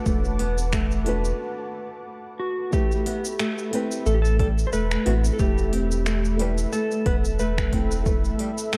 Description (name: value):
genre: organic downtempo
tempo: 90 BPM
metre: 4/4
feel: swing 56% on 16ths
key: unclear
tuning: A4 = 436 Hz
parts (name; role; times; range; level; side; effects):
- felt-muted upright piano; accompaniment; 0.0-8.8 s; A3 to B4; -35 LUFS; equal; sidechain pumping, delay
- warm analog pad; sustained chords; 0.0-8.8 s; A4 to D6; -38 LUFS; equal; chorus, sidechain pumping
- wind-like tuned noise texture; texture; 0.0-1.4 s; A3 to A4; -47 LUFS; equal; none
- nylon-string guitar; arpeggios; 0.1-8.8 s; G3 to C4; -31 LUFS; equal; delay
- warm sub bass; bass; 0.1-8.3 s; E1 to A1; -26 LUFS; equal; sidechain pumping
- electronic kick drum; drums; 0.1-8.2 s; none; -27 LUFS; equal; overdrive
- organic electronic drum kit; drums; 0.1-8.8 s; finger snaps, hi-hat, shaker; -35 LUFS; equal; overdrive
- clean lap steel guitar; melody; 2.4-7.9 s; F#4 to C5; -32 LUFS; equal; delay
room: light reverb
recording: dark, warm production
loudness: -24 LUFS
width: mono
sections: 0.0-2.7 A section; 2.7-8.8 B section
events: break 1.4-2.7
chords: 0.0 Bm7; 2.7 Amadd9